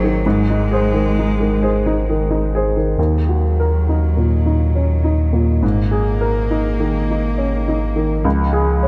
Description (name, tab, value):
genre	neoclassical piano and strings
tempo	68 BPM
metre	3/4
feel	rubato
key	unclear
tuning	A4 = 440 Hz
part	rich cello	second line	0.0-8.9 s	F3 to Bb3	-27 LUFS	equal	delay
part	clear upright piano	accompaniment	0.0-8.9 s	Db2 to Db5	-21 LUFS	equal	none
part	pure sine sub bass	bass	0.0-8.9 s	Ab1 to Eb2	-21 LUFS	equal	none
room	moderate cathedral reverb, RT60 5.9 s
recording	dreamy mix soaked in reverb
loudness	-17 LUFS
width	mono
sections	0.0-3.0 A section; 3.0-8.9 B section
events	none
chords	0.0 Ab; 3.0 Ebm; 5.6 Absus2; 8.2 Db